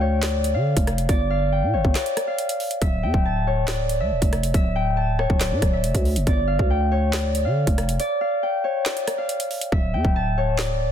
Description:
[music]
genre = hip hop, drill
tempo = 139 BPM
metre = 4/4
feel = half-time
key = unclear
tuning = A4 = 436 Hz
[part]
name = Celtic harp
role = melody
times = 0.0-10.9 s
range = C#5 to A5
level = -24 LUFS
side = left 1 dB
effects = low-pass filter
[part]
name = growling 808-style bass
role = bass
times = 0.0-10.9 s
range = D1 to D3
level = -23 LUFS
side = equal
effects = none
[part]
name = drill drum kit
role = drums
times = 0.2-10.7 s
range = handclaps, hi-hat, kick drum, rim click, snare drum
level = -24 LUFS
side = equal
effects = none
[sound]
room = little or no reverb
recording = dense, heavily limited modern master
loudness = -20 LUFS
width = side -9 dB against mid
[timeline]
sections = 0.0-10.9 A section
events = break 2.0-2.8, 8.0-9.7; hi-hats muted 9.7-10.9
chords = 0.0 G7(no3); 2.8 Dmadd9; 6.3 G5; 9.7 Dsus2

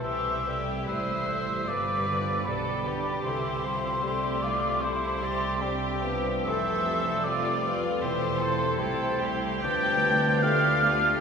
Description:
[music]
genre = classical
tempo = 75 BPM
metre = 4/4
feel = uneven beats, rubato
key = unclear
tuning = A4 = 440 Hz
[part]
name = warm chamber violin section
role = melody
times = 0.0-11.2 s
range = E4 to C5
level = -35 LUFS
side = left 4 dB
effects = none
[part]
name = mellow hollow concert flute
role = second line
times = 0.0-11.2 s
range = G5 to G6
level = -28 LUFS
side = equal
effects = none
[part]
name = warm chamber violin section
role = second line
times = 0.0-11.2 s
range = G4 to G5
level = -38 LUFS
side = left 3 dB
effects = none
[part]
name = warm clarinet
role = second line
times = 0.0-11.2 s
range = D4 to A4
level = -39 LUFS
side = right 1 dB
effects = none
[part]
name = warm oboe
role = second line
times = 0.0-11.2 s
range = B4 to E5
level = -36 LUFS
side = right 2 dB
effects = none
[part]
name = warm bassoon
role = accompaniment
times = 0.0-11.2 s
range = D3 to A3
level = -38 LUFS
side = right 2 dB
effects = none
[part]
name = warm chamber viola section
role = accompaniment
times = 0.0-11.2 s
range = G3 to G4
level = -38 LUFS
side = right 1 dB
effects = none
[part]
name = dark French horn section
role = sustained chords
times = 0.0-11.2 s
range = F4 to C5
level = -35 LUFS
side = left 4 dB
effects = none
[part]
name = concert harp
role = arpeggios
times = 0.0-11.2 s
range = G2 to G4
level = -38 LUFS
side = equal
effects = none
[part]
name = dark chamber cello section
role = bass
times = 0.0-11.2 s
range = C2 to C3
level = -36 LUFS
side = right 4 dB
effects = none
[part]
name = warm chamber double bass section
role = bass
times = 0.0-11.2 s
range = E1 to D2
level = -36 LUFS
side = right 3 dB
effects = none
[sound]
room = wet cathedral reverb, RT60 4.9 s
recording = recorded in a church or concert hall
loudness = -24 LUFS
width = side -6 dB against mid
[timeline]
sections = 0.0-11.2 A section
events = none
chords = 0.0 C; 1.7 G7; 3.3 C; 6.5 Fmaj7; 8.0 C/E; 9.6 G7/D

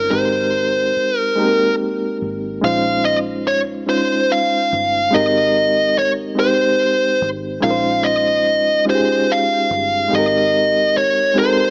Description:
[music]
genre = slow six-eight R&B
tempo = 48 BPM (dotted quarters)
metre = 6/8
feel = straight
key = Ab major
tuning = A4 = 435 Hz
[part]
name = fuzz lead guitar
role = melody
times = 0.0-11.7 s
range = Bb4 to F5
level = -18 LUFS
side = equal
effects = distortion
[part]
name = bright reed electric piano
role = accompaniment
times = 0.0-11.7 s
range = Ab3 to C5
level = -22 LUFS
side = equal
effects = fast tremolo
[part]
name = vintage muted fingered electric bass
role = bass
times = 0.0-11.7 s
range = G1 to Bb1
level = -34 LUFS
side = equal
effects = none
[sound]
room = light reverb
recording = small speaker sound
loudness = -17 LUFS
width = mono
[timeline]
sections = 0.0-2.6 A section; 2.6-11.7 B section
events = none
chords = 0.1 Abmaj9; 2.6 Bbm11; 5.1 Abmaj9; 7.6 Bbm11; 10.1 Abmaj9

